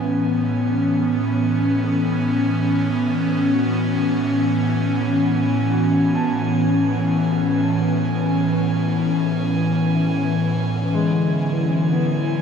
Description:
ambient; free time; A major; A4 = 440 Hz
airy breathy pad; sustained chords; 0.0-12.4 s; A2 to E4; -18 LUFS; equal; chorus
felt-muted upright piano; arpeggios; 0.0-12.4 s; E3 to A5; -33 LUFS; left 2 dB; ping-pong delay
drifting glass-harmonics texture; texture; 0.0-12.4 s; G#5; -34 LUFS; right 6 dB; chorus, built-in reverb
wet huge ambient reverb, RT60 9.0 s; -17 LUFS; side -6 dB against mid
0.0-12.4 A section
fade-in on felt piano 0.0-12.4; fade-in on synth texture 0.0-12.4
0.0 Amaj9; 10.8 E9

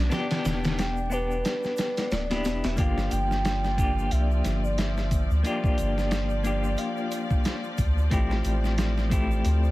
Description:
trip hop; 90 BPM; 4/4; swing 57% on 16ths; G dorian; A4 = 440 Hz
clean electric guitar; accompaniment; 0.0-9.7 s; A3 to G4; -31 LUFS; left 3 dB; tremolo, tape echo
rich studio string section; sustained chords; 0.0-9.7 s; F3 to D5; -36 LUFS; equal
soft dub sub bass; bass; 0.0-9.7 s; D1 to D2; -26 LUFS; equal
dusty soul sampler-style drum kit; drums; 0.1-9.6 s; hi-hat, kick drum, snare drum; -28 LUFS; equal
tube shaker; percussion; 0.1-9.7 s; -50 LUFS; right 8 dB
pure breathy sine lead; melody; 0.8-7.8 s; B4 to G5; -32 LUFS; right 1 dB; chorus, tape echo
little or no reverb; vinyl crackle; -23 LUFS; side -18 dB against mid
0.0-9.7 A section
kick drops out 1.4-2.8
0.0 Em7; 2.8 Gm7; 8.1 Am7

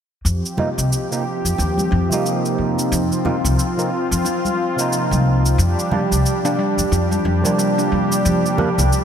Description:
organic downtempo; 90 BPM; 4/4; swing 59% on 16ths; A4 = 440 Hz
upright bass; bass; 0.2-8.9 s; C2 to F2; -19 LUFS; left 1 dB
warm analog pad; sustained chords; 0.3-9.0 s; F3 to G4; -22 LUFS; equal; chorus, tremolo
cabasa; drums; 0.3-9.0 s; -27 LUFS; right 1 dB
overdriven tine electric piano; accompaniment; 0.6-8.7 s; C3 to Eb4; -23 LUFS; right 2 dB; phaser, digital delay
congas and bongos; percussion; 0.6-8.9 s; -28 LUFS; right 1 dB
handpan; arpeggios; 5.6-8.9 s; F3 to D4; -21 LUFS; equal; digital delay
moderate lush hall reverb, RT60 2.5 s; bright 1980s-style digital production; -16 LUFS; side -8 dB against mid
0.3-9.0 A section
0.3 F5; 5.6 Gm7

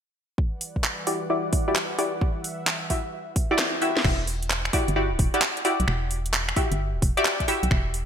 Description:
UK garage, two-step garage; 131 BPM; 4/4; swing 66% on 16ths; E minor; A4 = 440 Hz
warm analog pad; sustained chords; 0.4-4.0 s; E3 to F#5; -36 LUFS; right 1 dB; chorus, sidechain pumping
electronic kick drum; drums; 0.4-7.8 s; -25 LUFS; equal
garage drum kit; drums; 0.6-8.1 s; crash cymbal, finger snaps, handclaps, hi-hat, snare drum; -26 LUFS; right 1 dB; gated reverb
punchy chord stab; stabs; 1.1-8.1 s; E4 to E5; -26 LUFS; left 1 dB; chorus, digital delay
organ-like FM bass; bass; 4.0-8.1 s; D1 to B1; -26 LUFS; equal
moderate lush hall reverb, RT60 1.7 s; bright 1980s-style digital production; -22 LUFS; side -8 dB against mid
0.4-4.0 A section; 4.0-8.1 B section
filter sweep on synth stab 0.4-4.0; drum fill 3.6-4.0
0.4 Em9

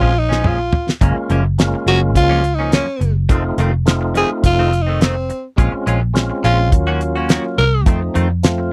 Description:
straight-eighth soul blues; 105 BPM; 4/4; straight; Bb minor; A4 = 440 Hz
growling tenor saxophone; melody; 0.0-7.8 s; C4 to Bb4; -20 LUFS; equal
percussive tonewheel organ; accompaniment; 0.0-8.7 s; F3 to F4; -24 LUFS; equal; slow rotary speaker
direct-recorded clean electric guitar; stabs; 0.0-8.6 s; F2 to Gb4; -25 LUFS; equal; lush chorus
vintage muted fingered electric bass; bass; 0.0-8.7 s; F1 to F2; -20 LUFS; equal
damped 70s drum kit; drums; 0.0-8.6 s; hi-hat, kick drum, snare drum, toms; -18 LUFS; equal
light reverb; dry, close 1970s-style studio recording; -16 LUFS; mono
0.0-8.7 A section
drum fill 0.0-1.0
0.0 Bbm7; 1.0 Gbmaj7; 3.3 F7; 5.6 Bbm7; 6.7 Ebm7; 7.9 F7

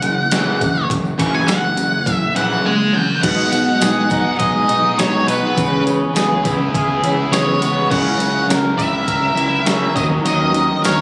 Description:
indie rock; 103 BPM; 4/4; straight; B major; A4 = 440 Hz
octave-fuzz lead guitar; melody; 0.0-11.0 s; B4 to C#6; -22 LUFS; equal; distortion, analog delay
mellow electric guitar; riff; 0.0-11.0 s; F#2 to A#4; -25 LUFS; equal; ensemble chorus
overdriven electric guitar; riff; 0.0-11.0 s; F#2 to A#4; -22 LUFS; equal; analog chorus
fuzz fingered electric bass; bass; 0.0-11.0 s; F#1 to C#3; -25 LUFS; equal; overdrive
detuned 8-bit digital drum machine; drums; 0.0-11.0 s; crash cymbal, hi-hat, kick drum, snare drum, tambourine; -24 LUFS; equal
tambourine; percussion; 0.0-11.0 s; -38 LUFS; equal
light reverb; recorded on a phone in the room, club reverb, compression; -17 LUFS; mono
0.0-3.2 A section; 3.2-11.0 B section
lead electric guitar solo 0.0-3.2
0.0 F#7; 3.2 B6; 5.6 C#m7; 7.9 F#7/C#; 10.0 D#m7

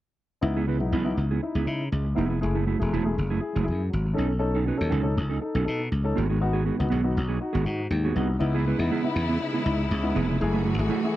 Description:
disco; 120 BPM; 4/4; straight; C# minor; A4 = 440 Hz
dark grand piano; accompaniment; 0.4-11.2 s; G#2 to A4; -29 LUFS; left 3 dB
mellow electric guitar; accompaniment; 0.4-11.2 s; A3 to B4; -30 LUFS; right 6 dB
slap bass; bass; 0.4-10.9 s; E1 to C#3; -25 LUFS; equal
clear studio string section; sustained chords; 8.4-11.2 s; C#3 to F#4; -31 LUFS; left 2 dB
studio reverb; dry, close 1970s-style studio recording; -23 LUFS; side -14 dB against mid
0.4-8.4 A section; 8.4-11.2 B section
0.4 C#m7; 2.4 F#m9; 4.2 B9; 6.2 G#m7; 8.4 C#m7; 10.4 F#m9

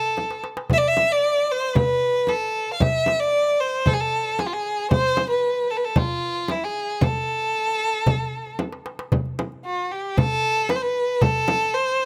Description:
Arabic maqam ensemble; 114 BPM; 4/4; straight; A maqam nahawand; A4 = 440 Hz
rich violin; melody; 0.0-12.1 s; E4 to F5; -23 LUFS; equal
darbuka; percussion; 0.0-12.1 s; -27 LUFS; equal
frame drum; percussion; 0.2-11.6 s; -28 LUFS; equal
light reverb, studio ambience; rough home demo mix; -22 LUFS; mono
0.0-9.1 A section; 9.1-12.1 B section
drum fill 0.2-0.7, 8.6-9.1

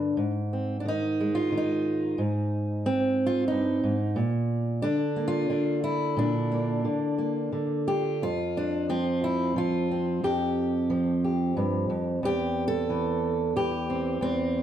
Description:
folk, solo fingerstyle acoustic guitar; 90 BPM; 3/4; rubato; A4 = 441 Hz
fingerpicked steel-string acoustic guitar; solo; 0.0-14.6 s; E2 to A4; -24 LUFS; equal; slapback echo
light reverb; dry, close 1970s-style studio recording; -24 LUFS; side -10 dB against mid
0.0-8.2 A section; 8.2-14.6 B section
0.2 Ab; 4.2 Bb; 8.2 Fsus2; 12.2 C/E

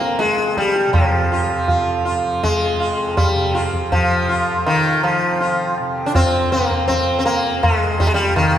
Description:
indian classical, Hindustani; 81 BPM; 5/4; straight; F raga bhimpalasi; A4 = 441 Hz
sitar; melody; 0.0-8.6 s; Eb3 to F4; -17 LUFS; left 1 dB
tanpura; drone; 0.0-8.6 s; F2 to F3; -27 LUFS; right 1 dB
tabla; percussion; 0.0-8.6 s; -21 LUFS; right 1 dB
wet church reverb, RT60 3.0 s; recorded in a church or concert hall; -15 LUFS; side -10 dB against mid
0.0-8.4 A section

